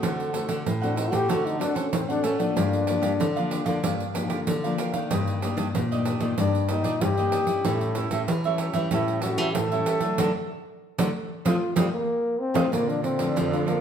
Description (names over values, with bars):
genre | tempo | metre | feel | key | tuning
samba and choro | 94 BPM | 4/4 | straight | G minor | A4 = 443 Hz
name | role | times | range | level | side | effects
cavaquinho | accompaniment | 0.0-13.8 s | D4 to Bb5 | -32 LUFS | right 7 dB | none
nylon-string guitar | accompaniment | 0.0-13.8 s | F2 to F#4 | -30 LUFS | left 2 dB | none
nylon-string guitar | bass | 0.0-13.8 s | G2 to D4 | -29 LUFS | left 1 dB | none
pandeiro | percussion | 0.0-13.8 s | none | -29 LUFS | right 3 dB | none
breathy trombone | melody | 0.8-13.8 s | G3 to A4 | -26 LUFS | left 2 dB | none
growling tenor saxophone | second line | 12.7-13.8 s | D3 | -29 LUFS | right 4 dB | none
room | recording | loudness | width
moderate large studio reverb, RT60 1.3 s | band playing live in one room | -23 LUFS | side -8 dB against mid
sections
0.0-12.7 A section; 12.7-13.8 B section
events
trombone solo 0.0-12.7; band accent 10.2-12.7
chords
0.0 D7; 2.6 Gm7; 5.1 Ebmaj7/G; 7.6 A7; 10.2 D; 11.5 F7; 12.7 Bbmaj7